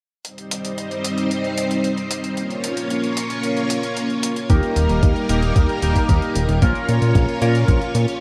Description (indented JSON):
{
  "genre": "italo disco",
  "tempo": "113 BPM",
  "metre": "4/4",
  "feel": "straight",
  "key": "Bb dorian",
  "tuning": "A4 = 442 Hz",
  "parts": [
    { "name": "string machine, full ensemble", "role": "sustained chords", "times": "0.2-8.2 s", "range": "G3 to Db5", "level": "-25 LUFS", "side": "equal", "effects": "ensemble chorus" },
    { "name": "electronic hi-hat", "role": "drums", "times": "0.2-8.2 s", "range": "none", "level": "-32 LUFS", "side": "equal", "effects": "overdrive, small room ambience" },
    { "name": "chorused polysynth", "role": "stabs", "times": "4.5-7.9 s", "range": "Bb3 to Bb4", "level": "-26 LUFS", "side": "equal", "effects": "tape echo" },
    { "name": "fat analog bass", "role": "bass", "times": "4.5-8.1 s", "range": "Eb1 to Bb2", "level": "-21 LUFS", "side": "equal", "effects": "none" },
    { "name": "electronic kick drum", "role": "drums", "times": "4.5-7.8 s", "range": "none", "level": "-19 LUFS", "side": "equal", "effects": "overdrive, small room ambience" }
  ],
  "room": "little or no reverb",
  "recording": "dry, close 1970s-style studio recording",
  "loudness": "-20 LUFS",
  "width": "mono",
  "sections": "0.2-8.2 A section",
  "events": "none",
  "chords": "0.2 Cm; 2.4 Bbm; 4.5 Eb; 6.6 Bbm",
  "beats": "| 0.25 0.78 1.31 1.84 | 2.37 2.90 3.44 3.96 | 4.50 5.03 5.56 6.09 | 6.62 7.15 7.68"
}